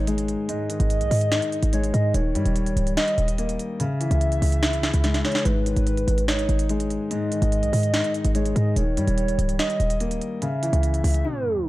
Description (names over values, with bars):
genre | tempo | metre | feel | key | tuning
hip hop, trap | 145 BPM | 4/4 | half-time | G# harmonic minor | A4 = 441 Hz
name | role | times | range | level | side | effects
Celtic harp | melody | 0.0-0.7 s | none | barely audible | none | none
hollow clarinet-like synth lead | second line | 0.0-11.7 s | B4 to E5 | -28 LUFS | right 1 dB | chorus, phaser, digital delay
dark concert grand piano | accompaniment | 0.0-11.7 s | G#2 to D#5 | -26 LUFS | left 2 dB | none
short 808-style bass | bass | 0.0-11.2 s | C#1 to G#2 | -22 LUFS | equal | none
trap drum kit | drums | 0.1-11.2 s | hi-hat, snare drum | -28 LUFS | right 1 dB | none
riser | sound effects | 11.2-11.7 s | none | -38 LUFS | right 2 dB | none
room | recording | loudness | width
light reverb | dark, warm production, tape stop | -20 LUFS | side -17 dB against mid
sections
0.0-11.7 A section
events
drum fill 5.0-5.5; riser 11.2-11.7; break 11.2-11.7; tape stop 11.2-11.7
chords
0.0 G#5; 2.1 D#; 3.8 C#m; 5.5 G#m; 8.8 D#; 10.4 C#m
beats
0.07 | 0.49 0.90 1.32 1.73 | 2.14 2.56 2.97 3.38 | 3.80 4.21 4.63 5.04 | 5.45 5.87 6.28 6.70 | 7.11 7.52 7.94 8.35 | 8.76 9.18 9.59 10.01 | 10.42 10.83 11.25 11.66